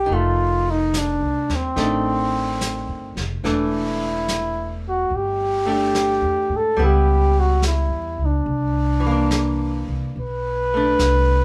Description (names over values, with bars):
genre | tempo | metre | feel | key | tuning
jazz ballad | 72 BPM | 4/4 | swing 67% on 8ths | unclear | A4 = 440 Hz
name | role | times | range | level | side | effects
trumpet with bucket mute | melody | 0.0-11.4 s | C4 to B4 | -24 LUFS | equal | none
archtop guitar, miked and amplified | accompaniment | 0.0-11.4 s | Eb3 to A4 | -28 LUFS | equal | none
upright bass | bass | 0.0-11.4 s | E1 to Ab2 | -25 LUFS | equal | none
vintage brush drum kit | drums | 0.1-11.4 s | brushed snare drum, hi-hat, snare drum | -34 LUFS | equal | none
room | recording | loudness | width
moderate studio reverb, RT60 0.5 s | band playing live in one room | -21 LUFS | mono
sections
0.0-11.4 A section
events
none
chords
0.1 F13; 3.4 Em7; 6.8 C#m7b5; 8.5 C9; 10.1 Bm7